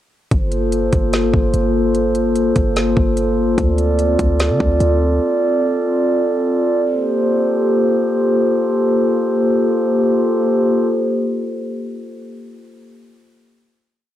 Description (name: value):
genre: hip hop, atmospheric cloud-rap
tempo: 147 BPM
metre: 4/4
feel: half-time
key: G minor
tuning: A4 = 440 Hz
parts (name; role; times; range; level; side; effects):
- glass harmonica; sustained chords; 0.3-10.9 s; Bb3 to D5; -16 LUFS; equal; sidechain pumping
- warm 808-style bass; bass; 0.3-5.2 s; G1 to D3; -19 LUFS; equal; none
- trap drum kit; drums; 0.3-4.9 s; hi-hat, kick drum, snare drum; -19 LUFS; equal; cassette tape
room: light reverb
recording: home recording on cassette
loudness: -14 LUFS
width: side -12 dB against mid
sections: 0.3-6.8 verse; 6.8-10.1 final chord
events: none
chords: 0.3 Gm11; 3.6 Dm7; 6.8 Gm11